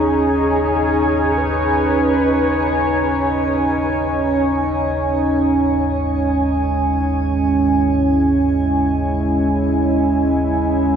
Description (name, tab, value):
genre	ambient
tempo	free time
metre	none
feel	none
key	G# minor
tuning	A4 = 440 Hz
part	mellow horn-like synth lead	melody	0.0-3.3 s	G#4 to B4	-23 LUFS	left 1 dB	wide subtle chorus, shimmer reverb, diffuse ambient delay
part	deep dark ambient pad	sustained chords	0.0-11.0 s	G#3 to G#5	-16 LUFS	right 1 dB	chorus, built-in reverb, shimmer reverb
part	deep rumbling drone	drone	0.0-11.0 s	G#1 to D#2	-23 LUFS	equal	built-in reverb, phaser, lush chorus
room	wet huge ambient reverb, RT60 8.7 s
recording	dreamy mix soaked in reverb, small room ambience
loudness	-15 LUFS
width	side -8 dB against mid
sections	0.0-11.0 A section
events	none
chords	0.0 G#m; 5.3 E/G#